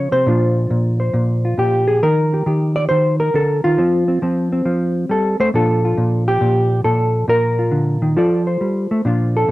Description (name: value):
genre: solo jazz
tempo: 136 BPM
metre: 4/4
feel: swing 68% on 8ths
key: Bb major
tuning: A4 = 440 Hz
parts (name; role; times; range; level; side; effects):
- hollow-body jazz guitar; solo; 0.0-9.5 s; Bb2 to D5; -14 LUFS; equal; none
room: light reverb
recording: dry, close 1970s-style studio recording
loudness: -14 LUFS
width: side -17 dB against mid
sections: 0.0-9.0 A section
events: none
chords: 0.3 Bbadd9; 2.0 Ebmaj9; 3.8 F; 5.5 Bbmaj7; 8.2 F69